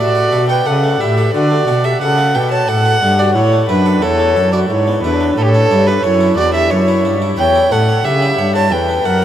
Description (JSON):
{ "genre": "classical, baroque-style sonata movement with continuo", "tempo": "90 BPM", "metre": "3/4", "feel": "rubato", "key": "unclear", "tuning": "A4 = 444 Hz", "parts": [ { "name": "baroque flute", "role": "melody", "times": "0.0-9.2 s", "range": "D4 to C#5", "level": "-17 LUFS", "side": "left 3 dB", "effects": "none" }, { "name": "warm violin", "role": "second line", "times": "0.0-9.2 s", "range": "G4 to A5", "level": "-15 LUFS", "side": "right 3 dB", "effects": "none" }, { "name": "harpsichord", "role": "accompaniment", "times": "0.0-9.2 s", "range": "E2 to E5", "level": "-22 LUFS", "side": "left 2 dB", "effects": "none" }, { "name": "warm cello", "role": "bass", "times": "0.0-9.2 s", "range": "E2 to D3", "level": "-16 LUFS", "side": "right 1 dB", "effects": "none" } ], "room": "wet huge ambient reverb, RT60 8.6 s", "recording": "in a vast, echoing space", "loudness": "-11 LUFS", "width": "side -10 dB against mid", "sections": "0.0-9.2 A section", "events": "none", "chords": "0.0 D; 0.7 A/C#; 1.3 D; 3.4 A5; 4.7 E/G#; 5.4 A; 7.4 C#dim/E; 8.7 F#7/E", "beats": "0.67 | 1.35 2.02 2.69 | 3.36 4.03 4.70 | 5.38 6.04 6.71 | 7.38 8.05 8.71" }